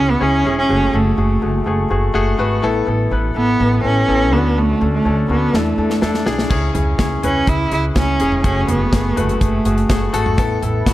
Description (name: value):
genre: piano-driven pop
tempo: 124 BPM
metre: 4/4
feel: straight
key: unclear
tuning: A4 = 436 Hz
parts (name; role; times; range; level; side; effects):
- rich cello; melody; 0.0-10.1 s; A3 to E4; -18 LUFS; right 2 dB; none
- clear grand piano; accompaniment; 0.0-10.9 s; A2 to B4; -20 LUFS; left 3 dB; none
- upright bass; bass; 0.0-10.9 s; E1 to E2; -19 LUFS; equal; none
- modern studio drum kit; drums; 5.5-10.9 s; crash cymbal, hi-hat, kick drum, snare drum, toms; -20 LUFS; equal; none
- sweeping resonant pad; sustained chords; 10.4-10.9 s; A4 to B5; -28 LUFS; left 2 dB; chorus
room: light reverb, studio reverb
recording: none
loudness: -14 LUFS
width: side -15 dB against mid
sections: 0.0-6.5 A section; 6.5-10.9 B section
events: drum fill 5.5-6.5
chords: 0.0 C#m; 0.7 F#madd9; 2.6 Asus2; 4.3 Dmaj7; 5.5 E7sus4; 6.5 C#m; 8.4 F#madd9; 10.4 Asus2